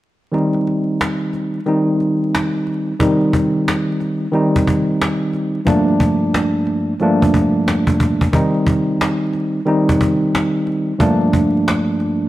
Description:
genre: hip hop, boom-bap hip-hop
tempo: 90 BPM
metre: 4/4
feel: swing 63% on 16ths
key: C dorian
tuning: A4 = 440 Hz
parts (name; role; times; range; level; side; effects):
- tine electric piano; accompaniment; 0.3-12.3 s; G2 to Eb4; -15 LUFS; equal; medium stereo tremolo, cassette tape, high-pass filter, low-pass filter
- cajon; drums; 0.3-12.1 s; none; -20 LUFS; equal; none
room: moderate echo chamber reverb, RT60 2.1 s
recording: dark, warm production, vinyl crackle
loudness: -14 LUFS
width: side -15 dB against mid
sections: 0.3-3.0 A section; 3.0-12.3 B section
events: kick muted 0.3-3.0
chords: 0.3 Cm; 5.7 Gm7; 8.3 Cm; 11.0 Gm7

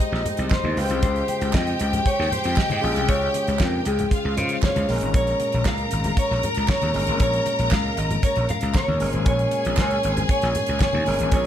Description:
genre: disco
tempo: 117 BPM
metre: 4/4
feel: straight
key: Bb dorian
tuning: A4 = 440 Hz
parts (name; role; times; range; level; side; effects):
- mellow electric guitar; melody; 0.0-11.5 s; G4 to F5; -26 LUFS; equal; none
- clear studio string section; second line; 0.0-11.5 s; Eb4 to Bb5; -27 LUFS; left 1 dB; slapback echo
- barky tine electric piano; accompaniment; 0.0-11.5 s; Bb2 to C5; -29 LUFS; left 3 dB; auto-pan
- damped 70s drum kit; drums; 0.0-11.4 s; hi-hat, kick drum, snare drum; -24 LUFS; right 1 dB; none
- gritty slap bass; bass; 0.1-11.5 s; G1 to Db3; -25 LUFS; equal; overdrive
- congas; percussion; 0.3-11.4 s; none; -32 LUFS; left 2 dB; none
- group handclap; percussion; 0.5-10.9 s; none; -34 LUFS; right 7 dB; none
room: light reverb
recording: none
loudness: -19 LUFS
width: side -10 dB against mid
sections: 0.0-11.5 A section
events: none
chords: 0.0 Abmaj7; 0.8 Dbmaj7; 4.9 Bbm7

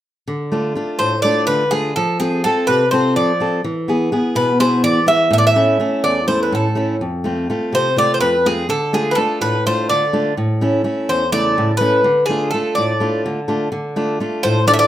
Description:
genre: greek folk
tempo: 250 BPM (eighths)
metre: 7/8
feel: straight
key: D dorian sharp4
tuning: A4 = 439 Hz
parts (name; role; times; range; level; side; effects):
- fingerpicked steel-string acoustic guitar; accompaniment; 0.3-14.9 s; E2 to A4; -18 LUFS; equal; none
- Greek bouzouki; melody; 1.0-14.9 s; G#4 to E5; -16 LUFS; equal; none
room: wet studio reverb, RT60 0.5 s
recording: rough home demo mix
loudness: -15 LUFS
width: side -12 dB against mid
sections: 0.3-13.7 A section; 13.7-14.9 A section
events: none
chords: 0.3 Dm; 2.0 F; 3.6 E; 5.3 A; 7.0 F; 8.7 Dm; 10.4 A; 12.0 Dm

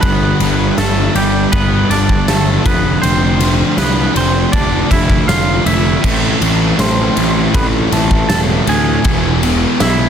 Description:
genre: quiet-loud alternative rock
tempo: 80 BPM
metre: 4/4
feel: straight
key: A minor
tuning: A4 = 440 Hz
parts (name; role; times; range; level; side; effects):
- twangy electric guitar; melody; 0.0-10.1 s; G3 to A5; -19 LUFS; right 3 dB; slapback echo
- thick fuzz guitar; riff; 0.0-10.1 s; G2 to F4; -19 LUFS; left 12 dB; distortion
- thick fuzz guitar; riff; 0.0-10.1 s; E2 to D4; -18 LUFS; right 10 dB; distortion
- fuzz picked electric bass; bass; 0.0-10.1 s; E1 to D2; -17 LUFS; equal; overdrive
- big rock drum kit; drums; 0.0-10.0 s; crash cymbal, kick drum, ride cymbal, snare drum; -16 LUFS; equal; none
- distorted electric guitar; riff; 6.0-10.1 s; E2 to A3; -22 LUFS; equal; overdrive
room: small room ambience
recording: dense, heavily limited modern master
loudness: -11 LUFS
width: side -8 dB against mid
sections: 0.0-10.1 A section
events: none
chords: 0.0 G; 2.7 Dm/F; 6.0 Am; 9.1 E

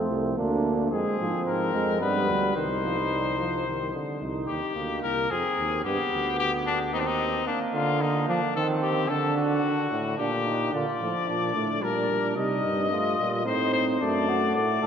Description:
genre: classical, imitative canzona for brass ensemble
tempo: 110 BPM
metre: 3/4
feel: straight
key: C minor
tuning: A4 = 440 Hz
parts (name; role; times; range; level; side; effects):
- mellow flugelhorn; second line; 0.0-14.9 s; Bb3 to A4; -30 LUFS; right 3 dB; none
- clear euphonium; accompaniment; 0.0-4.2, 7.7-14.9 s; A2 to C4; -28 LUFS; right 1 dB; none
- mellow bass trombone; bass; 0.0-7.5, 10.7-14.9 s; C2 to C3; -32 LUFS; right 1 dB; none
- bright trumpet; melody; 0.9-14.9 s; D4 to Eb5; -28 LUFS; left 5 dB; none
room: wet church reverb, RT60 4.2 s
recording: dark, warm production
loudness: -24 LUFS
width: side -8 dB against mid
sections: 0.9-4.2 A section; 4.2-10.7 B section; 10.7-14.9 A section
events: none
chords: 0.4 Bb/D; 0.9 Fmadd11; 2.0 G; 2.6 Cm; 5.3 Ab6; 5.8 G; 6.9 Cm/Eb; 7.5 Bbadd11/D; 8.6 Adim/Eb; 9.1 D; 10.2 Gm/Bb; 10.7 Bb; 11.8 Gm/Bb; 12.4 Cm; 13.5 Adim; 14.0 D/F#

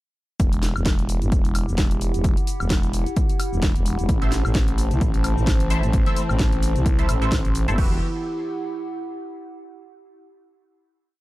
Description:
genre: bass house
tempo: 130 BPM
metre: 4/4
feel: swing 56% on 16ths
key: E minor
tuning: A4 = 438 Hz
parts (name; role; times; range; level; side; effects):
- growling FM bass; bass; 0.4-8.0 s; E1 to C2; -22 LUFS; equal; overdrive, sidechain pumping
- house drum kit; drums; 0.4-7.9 s; crash cymbal, kick drum; -22 LUFS; equal; overdrive
- house drum kit; drums; 0.4-7.8 s; hi-hat, shaker, snare drum, woodblock; -30 LUFS; equal; overdrive
- warbly tape-like pad; texture; 0.7-9.6 s; E4 to A5; -32 LUFS; equal; chorus, built-in reverb, sidechain pumping
- rich symphonic string section; sustained chords; 4.1-8.0 s; E3 to G4; -31 LUFS; left 1 dB; sidechain pumping
- band-passed chord stab; stabs; 4.2-8.0 s; E4 to E5; -31 LUFS; right 1 dB; phaser, analog chorus, sidechain pumping, dub echo
room: little or no reverb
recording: dark, warm production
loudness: -19 LUFS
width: side -18 dB against mid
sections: 0.4-7.8 drop; 7.8-9.6 final chord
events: drop 0.4-7.8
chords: 0.4 Emadd9; 4.1 Am; 7.8 Emadd9

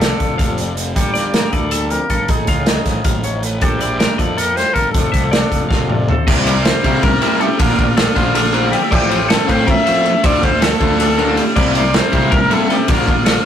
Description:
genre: math rock and midwest emo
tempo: 318 BPM (eighths)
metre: 7/8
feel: straight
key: F major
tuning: A4 = 445 Hz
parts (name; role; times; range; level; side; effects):
- warm trumpet; melody; 0.0-13.5 s; F4 to E5; -20 LUFS; left 2 dB; none
- twangy electric guitar; accompaniment; 0.0-13.5 s; F2 to Bb4; -24 LUFS; right 2 dB; none
- twelve-string electric guitar; arpeggios; 0.0-13.4 s; G4 to F5; -24 LUFS; left 3 dB; phaser
- fuzz fingered electric bass; bass; 0.0-13.4 s; F1 to C3; -22 LUFS; equal; overdrive
- loose indie drum kit; drums; 0.0-13.3 s; crash cymbal, hi-hat, kick drum, ride cymbal, snare drum, toms; -16 LUFS; equal; none
- crunchy overdriven guitar; riff; 6.3-13.1 s; C3 to F4; -19 LUFS; left 1 dB; none
room: moderate small room reverb, RT60 0.5 s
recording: rough rehearsal-room recording, warm saturation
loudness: -13 LUFS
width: side -9 dB against mid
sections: 0.0-6.3 A section; 6.3-13.5 B section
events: drum fill 5.7-6.3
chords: 0.0 F6; 1.0 Gm9; 2.3 F7alt/A; 3.6 Bbmaj7#11; 4.9 F6; 6.3 C9; 7.6 Bbmaj9; 8.9 Fmaj9/A; 10.2 Dm9; 11.6 C9; 12.9 Bbmaj7

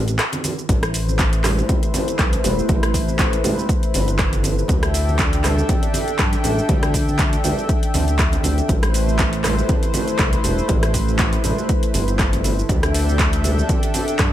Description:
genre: afro house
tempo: 120 BPM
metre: 4/4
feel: swing 55% on 16ths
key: A minor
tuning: A4 = 437 Hz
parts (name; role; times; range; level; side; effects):
- smooth synth bass; bass; 0.0-14.3 s; E1 to G2; -21 LUFS; equal; sidechain pumping
- deep house drum kit; drums; 0.1-14.3 s; handclaps, hi-hat, rim click, shaker; -24 LUFS; equal; overdrive, studio reverb
- congas; percussion; 0.3-14.1 s; none; -27 LUFS; right 2 dB; none
- warm analog pad; sustained chords; 0.7-14.3 s; A3 to G5; -24 LUFS; equal; chorus, sidechain pumping
- electronic kick drum; drums; 0.7-14.3 s; none; -20 LUFS; equal; overdrive, studio reverb
room: little or no reverb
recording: none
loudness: -16 LUFS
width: side -12 dB against mid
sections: 0.0-14.3 A section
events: break 0.2-0.7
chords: 0.0 N.C.; 0.7 Am9; 4.7 Dsus4; 8.7 Am9; 12.7 Dsus4

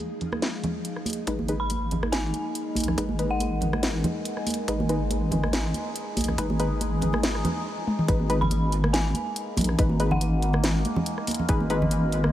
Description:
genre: deep dubstep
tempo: 141 BPM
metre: 4/4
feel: swing 54% on 16ths, half-time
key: G# dorian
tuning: A4 = 440 Hz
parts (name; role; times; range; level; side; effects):
- overtone-sweeping drone; sustained chords; 0.0-12.3 s; G#3 to G#4; -32 LUFS; equal; chorus, built-in reverb
- garage drum kit; drums; 0.0-12.3 s; hi-hat, rim click, snare drum, toms; -30 LUFS; equal; small room ambience
- backwards swelling texture; texture; 0.0-1.3 s; E#3; -42 LUFS; left 3 dB; built-in reverb
- congas; percussion; 0.2-12.3 s; none; -31 LUFS; right 2 dB; none
- filtered dub chord stab; stabs; 1.3-11.8 s; G#3 to B4; -33 LUFS; left 2 dB; chorus, dub echo
- deep soft wobble bass; bass; 1.3-12.3 s; G#1 to A#1; -26 LUFS; equal; chorus
- electronic kick drum; drums; 1.3-11.6 s; none; -24 LUFS; equal; high-pass filter on kick, small room ambience
- dark detuned synth bell; melody; 1.6-3.9, 8.4-10.7 s; F#5 to B5; -34 LUFS; equal; chorus, dub echo
room: light reverb, digital ambience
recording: vinyl crackle, low-pass filter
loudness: -23 LUFS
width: side -12 dB against mid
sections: 0.0-1.3 A section; 1.3-8.1 B section; 8.1-12.3 C section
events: filter sweep 0.0-1.3; build-up 1.3-8.1; drum fill 7.9; drop 8.1-12.3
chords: 0.0 G#5; 1.3 G#m

